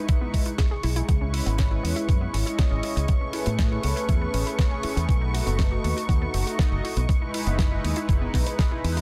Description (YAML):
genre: nu-disco, nu disco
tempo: 120 BPM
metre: 4/4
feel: straight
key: unclear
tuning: A4 = 440 Hz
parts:
  - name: warm analog pad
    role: accompaniment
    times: 0.0-9.0 s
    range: G#3 to D#5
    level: -33 LUFS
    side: equal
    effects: lush chorus, sidechain pumping, dub echo
  - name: muted studio string section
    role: sustained chords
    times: 0.0-9.0 s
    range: C#6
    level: -39 LUFS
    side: equal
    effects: sidechain pumping
  - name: unison pluck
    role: arpeggios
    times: 0.0-9.0 s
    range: B3 to D#5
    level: -38 LUFS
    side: equal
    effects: sidechain pumping, tape echo
  - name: damped 70s drum kit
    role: drums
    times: 0.1-9.0 s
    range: hi-hat, snare drum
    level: -35 LUFS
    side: equal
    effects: none
  - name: electronic kick drum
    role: drums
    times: 0.1-8.7 s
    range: none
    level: -25 LUFS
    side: equal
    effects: none
  - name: fingered electric bass with an envelope filter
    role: bass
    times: 0.8-9.0 s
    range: F#1 to A2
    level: -28 LUFS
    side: equal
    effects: none
room: small room ambience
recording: dense, heavily limited modern master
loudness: -24 LUFS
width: mono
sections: 0.0-9.0 A section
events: none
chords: 0.0 Emaj7; 1.1 C#m7; 3.1 Amaj9; 5.1 B7; 6.8 Emaj7